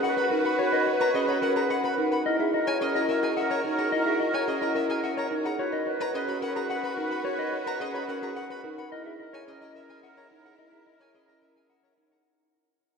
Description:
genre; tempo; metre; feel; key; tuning
classical, minimalist pattern music; 108 BPM; 3/4; straight; unclear; A4 = 441 Hz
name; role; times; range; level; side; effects
mellow electric guitar; melody; 0.0-12.3 s; G#4 to F#5; -29 LUFS; left 4 dB; none
warm symphonic string section; sustained chords; 0.0-12.1 s; E4 to B4; -34 LUFS; left 1 dB; none
rich violin; arpeggios; 0.0-12.2 s; D#5 to B5; -37 LUFS; left 1 dB; none
warm oboe; second line; 0.1-12.0 s; A#4 to B4; -32 LUFS; right 4 dB; none
marimba with soft mallets; arpeggios; 0.3-12.3 s; C#4 to B4; -30 LUFS; right 3 dB; none
room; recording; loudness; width
wet cathedral reverb, RT60 4.2 s; none; -24 LUFS; side -5 dB against mid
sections
0.0-12.3 A section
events
fade-out 1.6-12.3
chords
0.0 G#m11 (rootless); 2.3 F#13; 5.6 G#m11; 8.9 F#13 (rootless)

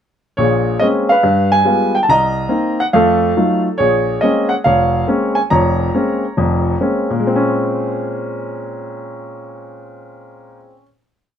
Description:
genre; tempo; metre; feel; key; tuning
solo jazz; 140 BPM; 4/4; swing 66% on 8ths; Bb minor; A4 = 440 Hz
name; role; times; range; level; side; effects
warm upright piano; solo; 0.4-10.8 s; F1 to Bb5; -14 LUFS; equal; none
room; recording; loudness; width
light reverb; close, detailed microphones; -13 LUFS; side -9 dB against mid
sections
0.4-7.2 A section; 7.2-10.6 final chord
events
none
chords
0.4 Bbm9; 1.2 G7b9; 2.1 Cm7; 2.9 F7b9; 3.8 Bbm9

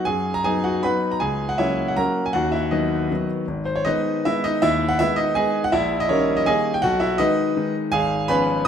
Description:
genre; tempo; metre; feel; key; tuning
classical, piano waltz; 160 BPM; 3/4; uneven beats, rubato; unclear; A4 = 440 Hz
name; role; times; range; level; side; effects
clear concert grand piano; solo; 0.0-8.7 s; G#1 to B5; -19 LUFS; equal; none
room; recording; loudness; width
moderate recital hall reverb, RT60 1.9 s; none; -19 LUFS; side -8 dB against mid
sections
0.0-8.7 A section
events
none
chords
0.0 B; 1.2 F#7/C#; 2.4 B/D#; 3.5 G#m; 5.7 D#7/A#; 6.8 G#m/B; 7.9 C#7/G#

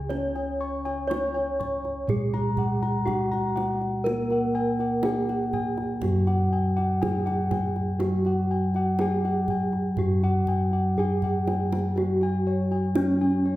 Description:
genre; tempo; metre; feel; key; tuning
Javanese gamelan; 61 BPM; 4/4; straight; unclear; A4 = 439 Hz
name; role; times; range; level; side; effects
gamelan-type bronze metallophone; melody; 0.0-13.6 s; C#4 to C#5; -29 LUFS; right 1 dB; none
gamelan-type bronze metallophone; accompaniment; 0.0-13.6 s; F#3+30c to C#4; -28 LUFS; equal; none
gamelan-type bossed gongs; bass; 0.0-13.6 s; C#2 to C#5; -29 LUFS; equal; none
kendang; percussion; 0.1-13.3 s; none; -34 LUFS; right 2 dB; none
gamelan-type bossed gongs; arpeggios; 0.4-13.6 s; C#5 to C#6; -31 LUFS; left 3 dB; none
room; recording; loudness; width
wet recital hall reverb, RT60 1.6 s; heard from further back in the room; -23 LUFS; side -16 dB against mid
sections
0.0-13.6 A section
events
drum fill 11.0-12.0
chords
none

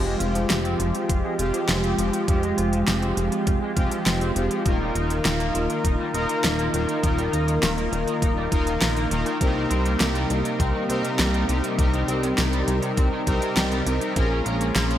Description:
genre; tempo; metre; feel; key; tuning
synthwave; 101 BPM; 4/4; straight; F minor; A4 = 435 Hz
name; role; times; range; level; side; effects
brassy analog pad; sustained chords; 0.0-15.0 s; C3 to Bb4; -27 LUFS; right 1 dB; chorus, sidechain pumping
analog synth brass; stabs; 0.0-15.0 s; Ab3 to Bb4; -26 LUFS; left 2 dB; chorus, digital delay
chorused synth bass; bass; 0.0-15.0 s; Eb1 to C2; -26 LUFS; equal; none
raw garage guitar; riff; 0.1-15.0 s; C3 to Bb4; -32 LUFS; right 1 dB; overdrive, ensemble chorus, low-pass filter, digital delay
pop drum kit; drums; 0.2-15.0 s; hi-hat, snare drum; -27 LUFS; equal; studio reverb
electronic kick drum; drums; 1.1-14.3 s; none; -23 LUFS; equal; studio reverb
room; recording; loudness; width
moderate plate reverb, RT60 2.4 s; bright 1980s-style digital production; -20 LUFS; side -11 dB against mid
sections
0.0-15.0 A section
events
filter sweep on overdriven electric guitar 0.0-15.0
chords
0.0 Fmadd9; 4.7 Ebsus2; 9.4 Cm7; 14.2 Bbm7

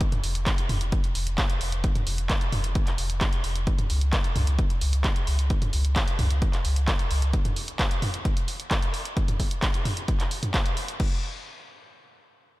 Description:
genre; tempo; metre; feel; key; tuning
driving peak-time techno; 131 BPM; 4/4; straight; unclear; A4 = 439 Hz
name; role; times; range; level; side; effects
electronic kick drum; drums; 0.0-11.1 s; none; -25 LUFS; equal; none
punchy analog drum machine; drums; 0.0-11.1 s; crash cymbal, handclaps, hi-hat, toms; -29 LUFS; equal; none
warm sub bass; bass; 0.2-7.3 s; F1 to Db2; -25 LUFS; equal; tube saturation, sidechain pumping, low-pass filter
room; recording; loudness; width
light reverb; none; -23 LUFS; side -18 dB against mid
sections
0.0-11.0 A section; 11.0-12.6 B section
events
drop 0.0-11.0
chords
none

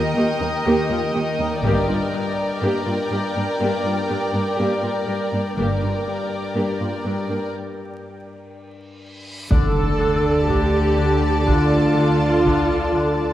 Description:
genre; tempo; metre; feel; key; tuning
cinematic, suspense film score; 61 BPM; 4/4; straight; D phrygian; A4 = 441 Hz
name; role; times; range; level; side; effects
warm symphonic violin section; second line; 0.0-13.3 s; Bb4 to Eb5; -27 LUFS; left 2 dB; none
ethereal airy pad; sustained chords; 0.0-13.3 s; A4 to A5; -28 LUFS; right 1 dB; ensemble chorus, built-in reverb
Celtic harp; riff; 0.0-13.3 s; G2 to Eb3; -27 LUFS; left 4 dB; none
dark symphonic viola section; accompaniment; 0.2-13.3 s; Bb3 to A4; -24 LUFS; right 1 dB; none
warm symphonic cello section; bass; 0.2-13.3 s; Eb2 to D3; -25 LUFS; right 1 dB; none
warm symphonic double bass section; bass; 1.6-13.3 s; G1 to D2; -24 LUFS; right 1 dB; none
taiko ensemble; drums; 1.6-3.6, 9.5-13.3 s; none; -24 LUFS; equal; none
reverse cymbal and impact; sound effects; 9.3-13.3 s; none; -26 LUFS; equal; none
rich symphonic violin section; melody; 9.5-13.3 s; A5; -29 LUFS; left 4 dB; none
room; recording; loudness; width
wet concert hall reverb, RT60 2.2 s; vinyl crackle; -18 LUFS; side -12 dB against mid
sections
0.0-9.5 A section; 9.5-13.3 A section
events
break 7.5-9.5; reverse cymbal 9.3; impact 9.5-13.3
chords
0.0 Eb; 1.6 Gm; 9.5 Dm

